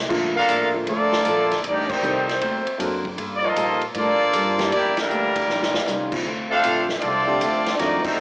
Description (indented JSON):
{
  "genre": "jazz, big band swing",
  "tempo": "156 BPM",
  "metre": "4/4",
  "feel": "swing 66% on 8ths",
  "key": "unclear",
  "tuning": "A4 = 440 Hz",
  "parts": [
    { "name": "upright bass", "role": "bass", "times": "0.0-8.2 s", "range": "A1 to Bb2", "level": "-33 LUFS", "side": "equal", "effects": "none" },
    { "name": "picked steel-string acoustic guitar", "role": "accompaniment", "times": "0.1-8.2 s", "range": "A2 to A4", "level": "-30 LUFS", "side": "left 1 dB", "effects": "none" },
    { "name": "warm grand piano", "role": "accompaniment", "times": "0.1-8.2 s", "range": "D3 to A4", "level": "-27 LUFS", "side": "equal", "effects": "none" },
    { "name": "swinging big-band drum kit", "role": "drums", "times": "0.1-8.2 s", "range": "crash cymbal, hi-hat, kick drum, ride cymbal, snare drum", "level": "-28 LUFS", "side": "equal", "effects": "cassette tape" },
    { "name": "bright trumpet section", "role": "melody", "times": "0.4-8.2 s", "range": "G3 to F5", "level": "-22 LUFS", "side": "equal", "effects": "cassette tape" },
    { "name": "muted trombone section", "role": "second line", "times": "0.4-8.2 s", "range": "D3 to A4", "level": "-24 LUFS", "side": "equal", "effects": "none" }
  ],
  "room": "wet spring reverb, RT60 1.6 s, small room ambience",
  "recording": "home recording on cassette, small speaker sound",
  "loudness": "-19 LUFS",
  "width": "side -28 dB against mid",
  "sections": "0.1-8.2 A section",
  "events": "band accent 1.8, 4.9, 8.0; drum fill 5.5-5.9",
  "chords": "0.1 Bbmaj7; 1.6 Am7b5; 2.4 D7b13; 3.2 Gm9; 4.7 Em7b5; 5.5 Eb9; 6.3 Dm7"
}